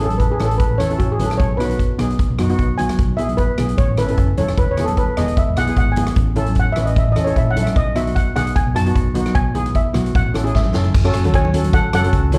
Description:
calypso; 151 BPM; 4/4; swing 54% on 16ths; E major; A4 = 436 Hz
steel pan; melody; 0.0-12.4 s; E4 to A5; -25 LUFS; equal; slapback echo
steel pan; accompaniment; 0.0-12.4 s; B3 to B4; -26 LUFS; equal; slapback echo
hollow-body short-scale fingered electric bass; bass; 0.0-12.4 s; E1 to F#2; -22 LUFS; equal
street-band drum kit; drums; 0.1-12.4 s; crash cymbal, hi-hat, kick drum, rim click, snare drum; -22 LUFS; equal
congas; percussion; 0.1-12.4 s; -29 LUFS; equal
light reverb, studio ambience; live gig heard through the venue's PA, club reverb; -18 LUFS; mono
0.0-10.9 A section; 10.9-12.4 B section
steel pan solo 0.0-10.9; drum fill 10.5-10.9
0.0 Aadd9; 1.4 B; 3.0 E/B; 3.8 Aadd9; 4.6 E; 6.2 Aadd9; 7.8 B; 9.4 E/B; 10.1 A; 10.9 F#madd9

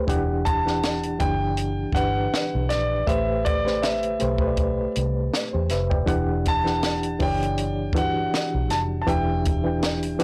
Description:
R&B, neo-soul; 80 BPM; 4/4; swing 54% on 16ths; A4 = 445 Hz
reed electric piano; accompaniment; 0.0-10.2 s; E3 to G5; -28 LUFS; equal; overdrive, fast tremolo
vintage muted fingered electric bass; bass; 0.1-10.2 s; E1 to E2; -30 LUFS; equal; tube saturation
compact cocktail drum kit; drums; 0.1-10.2 s; hi-hat, kick drum, snare drum; -29 LUFS; equal
clear grand piano; melody; 0.5-10.2 s; D5 to A5; -29 LUFS; equal
little or no reverb; blown-out, overdriven recording, overdrive; -24 LUFS; mono
0.1-10.2 A section
0.1 Em9; 3.1 Am9; 6.1 Em9

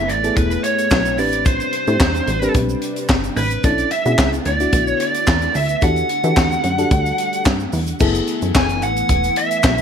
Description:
early-eighties boogie funk; 110 BPM; 4/4; straight; F# phrygian; A4 = 438 Hz
high-gain lead guitar; melody; 0.0-9.8 s; B4 to G#5; -20 LUFS; right 1 dB; distortion
mellow FM electric piano; accompaniment; 0.0-8.7 s; B3 to C5; -23 LUFS; left 3 dB; chorus
soft string machine; sustained chords; 0.0-9.8 s; A2 to G#5; -28 LUFS; right 1 dB; ensemble chorus
plucky analog bass; bass; 0.0-9.8 s; E1 to E3; -22 LUFS; equal
tight funk drum kit; drums; 0.1-9.8 s; crash cymbal, handclaps, hi-hat, kick drum, snare drum; -19 LUFS; equal; gated reverb
tube shaker; percussion; 0.1-9.8 s; -37 LUFS; right 14 dB
light reverb, small room ambience; -15 LUFS; side -7 dB against mid
0.0-8.0 A section; 8.0-9.8 B section
0.0 F#m11; 1.2 Am11; 3.6 Bm11; 5.8 Em11; 8.0 F#m11

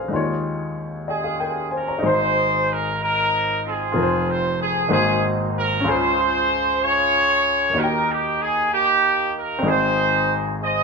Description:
gospel; 63 BPM (dotted quarters); 6/8; straight; Ab major; A4 = 440 Hz
warm baby grand piano; accompaniment; 0.0-10.8 s; F1 to Bb5; -23 LUFS; left 2 dB
clear horn section; melody; 1.1-10.8 s; Bb3 to Eb5; -19 LUFS; right 1 dB
wet large studio reverb, RT60 0.9 s; band playing live in one room; -18 LUFS; side -4 dB against mid
0.0-2.0 A section; 2.0-10.8 B section
0.1 Eb9sus4; 2.0 Ab; 3.9 Fm; 4.9 Ab9; 5.8 Db; 7.7 Eb; 9.6 Ab

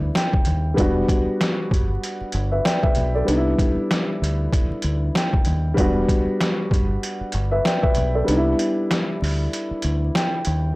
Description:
hip hop, boom-bap hip-hop; 96 BPM; 4/4; swing 57% on 16ths; E minor; A4 = 440 Hz
dark baby grand piano; accompaniment; 0.0-10.8 s; G3 to G5; -22 LUFS; equal; cassette tape, high-pass filter, low-pass filter
deep dub fingered electric bass; bass; 0.0-10.7 s; E1 to D#2; -22 LUFS; equal; tube saturation
trip hop sampler-style drum kit; drums; 0.2-10.6 s; hi-hat, kick drum, snare drum; -22 LUFS; equal; overdrive
little or no reverb; dry, gritty hardware recording, vinyl crackle; -18 LUFS; side -21 dB against mid
0.0-10.8 A section
kick muted 8.3-10.8
0.0 Cmaj7 (rootless); 0.8 Em7; 3.3 Cmaj7 (rootless); 5.8 Em7; 8.3 Cmaj7 (rootless)

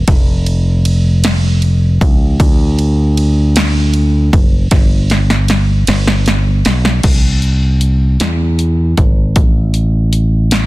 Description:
slow gospel; 52 BPM (dotted quarters); 6/8; straight; A4 = 440 Hz
modern bright fingered electric bass; bass; 0.0-10.7 s; F1 to E2; -12 LUFS; equal
punchy analog drum machine; drums; 0.1-10.7 s; crash cymbal, hi-hat, kick drum, ride cymbal, snare drum; -14 LUFS; equal
digital ambience; dense, heavily limited modern master; -10 LUFS; side -19 dB against mid
0.0-7.0 A section; 7.0-10.7 B section
drum fill 4.7-7.0

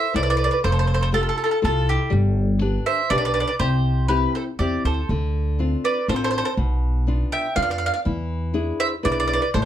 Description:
italian folk, Italian serenade; 122 BPM; 3/4; straight; A4 = 440 Hz
bowl-back mandolin; melody; 0.0-9.7 s; G4 to G5; -23 LUFS; right 1 dB; slapback echo
mandolin; second line; 0.0-9.7 s; E4 to E5; -28 LUFS; right 6 dB
nylon-string guitar; accompaniment; 0.0-9.7 s; B2 to C5; -27 LUFS; left 4 dB
upright bass; bass; 0.1-9.7 s; F1 to F2; -22 LUFS; equal
moderate studio ambience, RT60 0.5 s; dark, warm production; -19 LUFS; side -11 dB against mid
0.0-9.7 A section
0.0 Am; 0.6 Fadd9; 2.1 G; 3.6 C; 5.1 Dm7; 6.6 Bdim; 8.1 E7

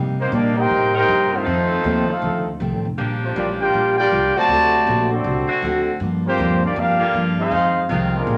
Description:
jazz, big band swing; 159 BPM; 4/4; swing 65% on 8ths; A4 = 440 Hz
picked steel-string acoustic guitar; accompaniment; 0.0-8.4 s; F2 to G4; -26 LUFS; equal
upright bass; bass; 0.0-8.4 s; F1 to C3; -27 LUFS; equal
mellow trumpet section; melody; 0.2-8.4 s; Ab3 to A5; -21 LUFS; equal
warm trombone section; second line; 0.2-8.4 s; C3 to G4; -27 LUFS; equal
warm saxophone section; sustained chords; 0.9-8.3 s; D3 to Bb4; -29 LUFS; equal
wet club reverb, RT60 0.9 s; -19 LUFS; mono
0.0-8.4 A section
0.0 Cm7; 1.5 F7; 3.0 Bb6; 4.5 D7; 6.0 Gm7; 7.5 Fm7

